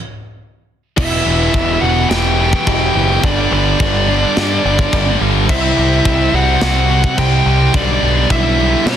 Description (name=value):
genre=heavy metal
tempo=106 BPM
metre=4/4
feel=straight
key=E minor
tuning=A4 = 440 Hz
part: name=high-gain lead guitar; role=melody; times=1.0-9.0 s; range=D5 to G5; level=-18 LUFS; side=left 1 dB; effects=distortion, ping-pong delay
part: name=bluesy overdriven lead guitar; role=second line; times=1.0-9.0 s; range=D4 to G4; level=-24 LUFS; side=right 3 dB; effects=distortion
part: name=heavy high-gain guitar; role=riff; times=1.0-9.0 s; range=E2 to C4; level=-20 LUFS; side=left 14 dB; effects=distortion
part: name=heavy high-gain guitar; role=riff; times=1.0-9.0 s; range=E2 to C4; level=-20 LUFS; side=right 12 dB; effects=distortion
part: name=thick fuzz guitar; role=riff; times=1.0-9.0 s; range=B2 to G4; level=-21 LUFS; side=right 1 dB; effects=distortion
part: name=growling picked electric bass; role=bass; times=1.0-9.0 s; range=E1 to B2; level=-17 LUFS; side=equal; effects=overdrive
part: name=tight metal drum kit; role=drums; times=1.0-9.0 s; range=china cymbal, crash cymbal, kick drum, snare drum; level=-20 LUFS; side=left 1 dB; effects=none
room=little or no reverb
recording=dense, heavily limited modern master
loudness=-11 LUFS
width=side -9 dB against mid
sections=1.0-9.0 A section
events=stop 0.0-1.0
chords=0.0 N.C.; 1.0 Em; 3.2 G; 5.5 C; 7.7 G/B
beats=0.41 | 0.98 1.54 2.11 2.67 | 3.24 3.80 4.37 4.93 | 5.49 6.06 6.62 7.18 | 7.74 8.31 8.87